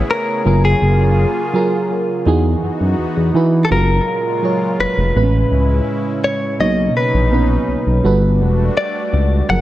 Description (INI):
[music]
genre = contemporary R&B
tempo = 83 BPM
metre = 4/4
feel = straight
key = unclear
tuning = A4 = 439 Hz
[part]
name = direct-recorded clean electric guitar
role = melody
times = 0.0-9.6 s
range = G#4 to F#5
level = -20 LUFS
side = left 2 dB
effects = analog delay
[part]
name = mellow FM electric piano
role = accompaniment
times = 0.0-9.6 s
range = A2 to C#5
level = -19 LUFS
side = right 3 dB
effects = chorus, analog delay
[part]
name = warm analog pad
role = sustained chords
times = 0.0-9.6 s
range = A#2 to G#4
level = -24 LUFS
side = equal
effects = chorus
[part]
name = smooth synth bass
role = bass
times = 0.0-9.6 s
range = E1 to E3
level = -15 LUFS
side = equal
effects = none
[sound]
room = light reverb, digital ambience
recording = echo-heavy mix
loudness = -13 LUFS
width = side -14 dB against mid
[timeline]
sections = 0.0-3.7 A section; 3.7-9.6 B section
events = none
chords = 0.5 F#maj9; 2.3 Emaj9; 3.7 F#maj9; 5.1 Amaj9; 6.6 Bmaj9; 8.0 Gmaj9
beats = 0.09 | 0.81 1.53 2.26 2.98 | 3.70 4.43 5.15 5.87 | 6.59 7.32 8.04 8.76 | 9.49